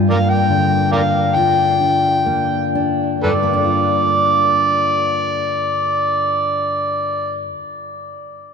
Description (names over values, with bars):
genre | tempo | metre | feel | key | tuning
folk | 60-75 BPM | 4/4 | straight | G minor | A4 = 437 Hz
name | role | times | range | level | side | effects
fingerpicked steel-string acoustic guitar | accompaniment | 0.0-7.9 s | G2 to F4 | -19 LUFS | left 2 dB | none
overdriven harmonica | melody | 0.1-7.4 s | A4 to G5 | -16 LUFS | equal | none
room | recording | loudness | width
wet cathedral reverb, RT60 5.7 s | in a vast, echoing space | -14 LUFS | side -6 dB against mid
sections
0.0-3.2 A section; 3.2-7.2 B section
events
slowing down 0.0-3.2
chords
0.0 Gm7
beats
0.51 1.36 2.26 | 3.23 4.22 5.20 6.17